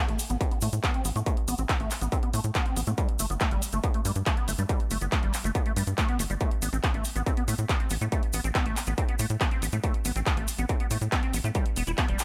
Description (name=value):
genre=uplifting trance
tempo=140 BPM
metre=4/4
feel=straight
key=A minor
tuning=A4 = 440 Hz
part: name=liquid acid bass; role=arpeggios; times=0.0-12.2 s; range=G3 to E4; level=-36 LUFS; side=equal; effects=ensemble chorus, sidechain pumping, tape echo
part: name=tight sequencer bass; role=bass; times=0.1-12.2 s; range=E1 to A2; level=-32 LUFS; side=equal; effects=sidechain pumping
part: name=punchy analog drum machine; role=drums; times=0.1-12.2 s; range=handclaps, hi-hat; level=-35 LUFS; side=equal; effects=sidechain pumping on hats, sidechain pumping on cymbals
part: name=tube shaker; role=percussion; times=0.2-12.2 s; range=none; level=-39 LUFS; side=equal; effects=none
part: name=electronic kick drum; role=drums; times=0.4-12.1 s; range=none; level=-30 LUFS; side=equal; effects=distortion, overdrive
room=little or no reverb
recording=none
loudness=-28 LUFS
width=mono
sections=0.0-12.2 A section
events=filter sweep on acid bass 0.0-12.2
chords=0.0 Amadd9; 3.0 Gsus2; 6.4 Asus2; 11.6 Em